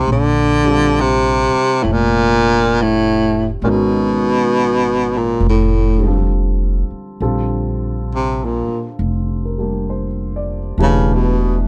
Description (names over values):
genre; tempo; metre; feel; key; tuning
jazz ballad; 67 BPM; 4/4; swing 66% on 8ths; Bb major from 7.2 s; A4 = 440 Hz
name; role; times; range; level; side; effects
warm baritone saxophone; melody; 0.0-11.6 s; A2 to D3; -17 LUFS; equal; none
warm grand piano; accompaniment; 0.0-11.7 s; D3 to D5; -25 LUFS; equal; none
upright bass; bass; 0.0-11.6 s; E1 to A#1; -21 LUFS; equal; none
room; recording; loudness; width
light reverb; dark, warm production; -16 LUFS; mono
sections
0.0-7.2 A section; 7.2-11.7 B section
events
baritone saxophone solo 7.2-11.7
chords
0.1 A#maj9; 3.6 G#m7; 5.4 Fadd9; 7.2 Bbmaj9; 10.8 Em7